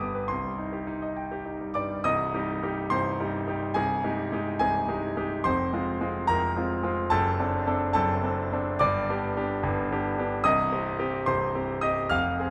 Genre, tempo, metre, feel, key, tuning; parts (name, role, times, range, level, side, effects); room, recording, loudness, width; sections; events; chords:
classical, virtuoso piano study; 66-74 BPM (dotted quarters); 6/8; rubato; C minor; A4 = 442 Hz
bright concert grand piano; solo; 0.0-12.5 s; C1 to F6; -28 LUFS; equal
wet concert hall reverb, RT60 1.9 s; -27 LUFS; mono
0.0-2.0 A section; 2.0-12.5 A section
0.3 Cm; 3.8 Abmaj7/C; 5.5 Fm; 7.1 D7/F#; 8.8 G; 10.4 Cm